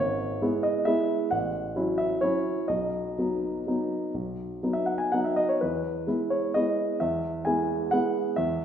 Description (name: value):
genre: classical, piano waltz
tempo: 119-140 BPM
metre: 3/4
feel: rubato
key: E major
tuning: A4 = 437 Hz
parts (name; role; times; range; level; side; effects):
- warm grand piano; solo; 0.0-8.6 s; G#1 to G#5; -25 LUFS; equal; none
room: wet recital hall reverb, RT60 1.5 s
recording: recorded in a church or concert hall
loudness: -25 LUFS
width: side -8 dB against mid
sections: 0.0-8.6 A section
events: none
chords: 0.0 E/G#; 1.3 F#m7/A; 2.7 B; 5.6 E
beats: 0.43 0.88 | 1.31 1.76 2.22 | 2.69 3.17 3.67 | 4.15 4.63 5.12 | 5.61 6.07 6.55 | 7.01 7.46 7.92 | 8.38